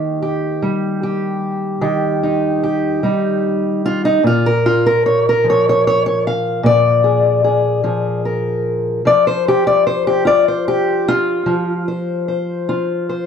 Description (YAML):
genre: acoustic country blues, solo or duo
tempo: 50 BPM (dotted quarters)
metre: 12/8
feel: straight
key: Bb mixolydian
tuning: A4 = 440 Hz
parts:
  - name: fingerpicked steel-string acoustic guitar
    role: solo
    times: 0.0-13.3 s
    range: Bb2 to F5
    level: -14 LUFS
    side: left 1 dB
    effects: none
room: moderate small room reverb, RT60 0.5 s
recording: none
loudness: -14 LUFS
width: side -7 dB against mid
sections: 0.0-13.3 A section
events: steel-string acoustic guitar solo 0.0-13.3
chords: 0.0 Eb; 4.2 Bb7; 9.1 F5